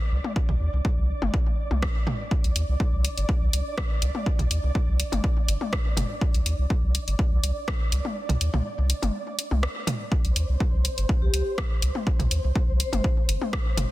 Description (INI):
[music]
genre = minimal techno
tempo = 123 BPM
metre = 4/4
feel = straight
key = unclear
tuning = A4 = 440 Hz
[part]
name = flickering grainy texture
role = texture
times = 0.0-13.9 s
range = C5 to D5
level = -36 LUFS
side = right 1 dB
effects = built-in reverb, sidechain pumping
[part]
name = saturated sub bass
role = bass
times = 0.1-13.9 s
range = G1 to Eb2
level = -24 LUFS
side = equal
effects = sidechain pumping
[part]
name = electronic toms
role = percussion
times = 0.2-13.9 s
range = none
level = -31 LUFS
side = left 1 dB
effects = digital delay
[part]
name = electronic kick drum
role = drums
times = 0.4-13.6 s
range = none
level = -25 LUFS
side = equal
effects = none
[part]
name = house drum kit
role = drums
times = 1.8-13.9 s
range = hi-hat, rim click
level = -30 LUFS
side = left 1 dB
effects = soft clipping on snare
[part]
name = vibraphone with medium mallets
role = melody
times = 11.2-13.0 s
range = G4 to C5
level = -32 LUFS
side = left 1 dB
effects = digital delay
[sound]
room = digital ambience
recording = dense, heavily limited modern master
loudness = -22 LUFS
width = side -16 dB against mid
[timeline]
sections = 0.0-13.9 A section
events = kick drops out 8.2-10.1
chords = none